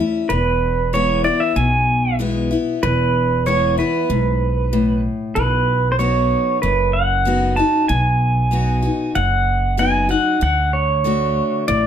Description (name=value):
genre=honky-tonk and classic country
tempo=95 BPM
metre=4/4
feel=straight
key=unclear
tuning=A4 = 440 Hz
part: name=picked steel-string acoustic guitar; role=accompaniment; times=0.0-11.9 s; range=E2 to F#4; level=-22 LUFS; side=left 4 dB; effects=none
part: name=pedal steel guitar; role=melody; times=0.3-11.9 s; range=B4 to A5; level=-18 LUFS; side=right 3 dB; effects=none
part: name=upright bass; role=bass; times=0.3-11.9 s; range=E1 to D2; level=-20 LUFS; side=right 1 dB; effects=none
room=moderate studio reverb, RT60 0.8 s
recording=none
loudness=-15 LUFS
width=side -9 dB against mid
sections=0.0-11.9 A section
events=none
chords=0.3 E; 5.4 B; 10.4 D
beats=| 0.30 0.93 1.56 2.20 | 2.83 3.46 4.09 4.73 | 5.36 5.99 6.62 7.26 | 7.89 8.52 9.15 9.79 | 10.42 11.05 11.69